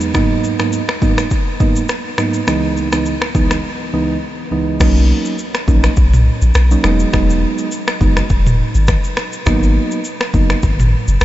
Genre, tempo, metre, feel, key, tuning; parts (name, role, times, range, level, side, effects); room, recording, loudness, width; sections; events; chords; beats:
afrobeats; 103 BPM; 4/4; swing 55% on 16ths; B major; A4 = 440 Hz
soft electric-piano-like synth keys; accompaniment; 0.0-10.6 s; C#2 to D#4; -18 LUFS; right 2 dB; chorus
afro-pop drum kit; drums; 0.0-11.2 s; crash cymbal, finger snaps, kick drum, rim click, shaker, toms; -17 LUFS; equal; overdrive
punchy sub bass; bass; 4.8-11.2 s; E1 to B1; -13 LUFS; equal
light reverb; nothing above 7.8 kHz; -13 LUFS; side -14 dB against mid
0.0-4.8 A section; 4.8-11.2 B section
break 3.6-4.8
0.1 G#m7; 2.5 C#m7; 4.8 Bmaj7; 6.8 Emaj7; 9.5 G#m7
| 0.14 0.73 1.31 1.89 | 2.48 3.06 3.64 4.22 | 4.80 5.39 5.97 6.55 | 7.13 7.72 8.30 8.88 | 9.46 10.05 10.63 11.21